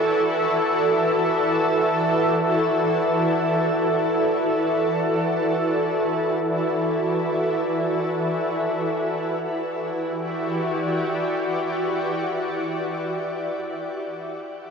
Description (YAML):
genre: ambient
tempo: free time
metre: none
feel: none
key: E minor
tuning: A4 = 439 Hz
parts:
  - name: shimmering ambient pad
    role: solo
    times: 0.0-13.7 s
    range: E3 to D5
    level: -21 LUFS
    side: equal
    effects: chorus, built-in reverb, ping-pong delay
room: wet shimmer reverb, RT60 7.3 s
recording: worn, warbling old tape, cassette tape, warbly pitch drift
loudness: -20 LUFS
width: side -6 dB against mid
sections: 0.0-8.8 A section; 8.8-13.0 B section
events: none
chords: 0.0 D/E; 8.8 Em7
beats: free time